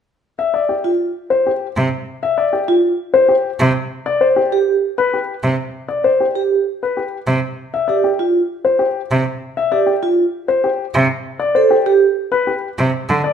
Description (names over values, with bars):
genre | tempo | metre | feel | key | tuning
classical, minimalist pattern music | 196 BPM | 6/4 | straight | unclear | A4 = 440 Hz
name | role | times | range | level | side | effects
warm grand piano | melody | 0.4-13.3 s | G4 to E5 | -16 LUFS | left 4 dB | none
vibraphone with soft mallets | arpeggios | 0.8-12.1 s | F4 to A4 | -16 LUFS | right 5 dB | none
clear cello | accompaniment | 1.8-13.2 s | C3 to D3 | -17 LUFS | right 2 dB | none
room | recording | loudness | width
moderate large studio reverb, RT60 1.2 s | lossy compression artefacts | -14 LUFS | side -8 dB against mid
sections
0.4-13.3 A section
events
none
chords
0.4 Fsus2; 4.1 C5; 7.7 Fsus2; 11.4 Csus2